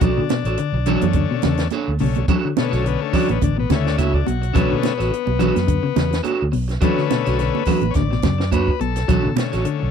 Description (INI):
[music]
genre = afrobeat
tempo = 106 BPM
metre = 4/4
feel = swing 55% on 16ths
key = B minor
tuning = A4 = 439 Hz
[part]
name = combo organ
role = accompaniment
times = 0.0-9.9 s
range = D3 to D5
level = -24 LUFS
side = left 15 dB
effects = spring reverb
[part]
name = semi-hollow electric guitar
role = arpeggios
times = 0.0-9.8 s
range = B2 to F#3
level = -24 LUFS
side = left 7 dB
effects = spring reverb
[part]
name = electric guitar at the edge of break-up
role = stabs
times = 0.0-9.8 s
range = D4 to C#5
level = -24 LUFS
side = right 5 dB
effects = none
[part]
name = fingered electric bass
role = bass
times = 0.0-9.9 s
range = A1 to B2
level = -22 LUFS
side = right 1 dB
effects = none
[part]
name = compact cocktail drum kit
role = drums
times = 0.0-9.8 s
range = hi-hat, kick drum, snare drum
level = -23 LUFS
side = right 1 dB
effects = none
[part]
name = congas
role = percussion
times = 0.0-9.5 s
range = none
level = -25 LUFS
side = right 18 dB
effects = none
[sound]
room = light reverb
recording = dry, close 1970s-style studio recording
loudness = -17 LUFS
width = side -7 dB against mid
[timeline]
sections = 0.0-9.9 A section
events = transistor combo organ solo 0.0-9.9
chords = 0.0 Bm9